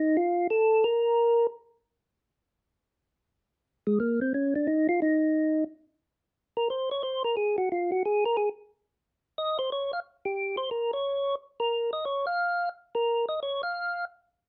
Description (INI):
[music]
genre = jazz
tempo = 178 BPM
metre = 4/4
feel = swing 63% on 8ths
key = Bb minor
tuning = A4 = 440 Hz
[part]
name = percussive tonewheel organ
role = solo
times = 0.0-1.5, 3.9-14.1 s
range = Ab3 to F5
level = -27 LUFS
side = equal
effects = slow rotary speaker
[sound]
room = light reverb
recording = close, detailed microphones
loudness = -28 LUFS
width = mono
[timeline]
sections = 0.0-3.6 A section; 3.6-14.5 B section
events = tonewheel organ solo 3.6-14.5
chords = none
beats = 0.27 0.61 | 0.95 1.29 1.62 1.96 | 2.30 2.64 2.98 3.31 | 3.65 3.99 4.33 4.66 | 5.00 5.33 5.67 6.01 | 6.34 6.68 7.02 7.35 | 7.69 8.02 8.36 8.69 | 9.03 9.36 9.70 10.03 | 10.37 10.71 11.04 11.38 | 11.71 12.05 12.39 12.72 | 13.06 13.40 13.73